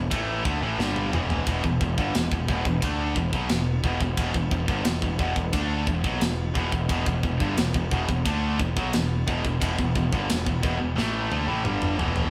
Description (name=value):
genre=heavy metal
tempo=88 BPM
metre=4/4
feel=straight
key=E minor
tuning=A4 = 441 Hz
part: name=scooped high-gain guitar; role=riff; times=0.0-12.3 s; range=E2 to D4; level=-31 LUFS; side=equal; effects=distortion
part: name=tight distorted guitar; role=riff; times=0.0-12.3 s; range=E2 to D4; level=-32 LUFS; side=equal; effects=distortion
part: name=fuzz picked electric bass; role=bass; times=0.0-12.3 s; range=E1 to D2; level=-31 LUFS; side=equal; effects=overdrive
part: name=tight metal drum kit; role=drums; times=0.1-12.3 s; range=kick drum, ride cymbal, snare drum, toms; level=-31 LUFS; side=equal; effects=none
room=moderate studio reverb, RT60 0.6 s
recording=band playing live in one room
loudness=-25 LUFS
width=mono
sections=0.0-12.3 A section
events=drum fill 0.8-1.5, 11.0-12.3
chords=0.0 Em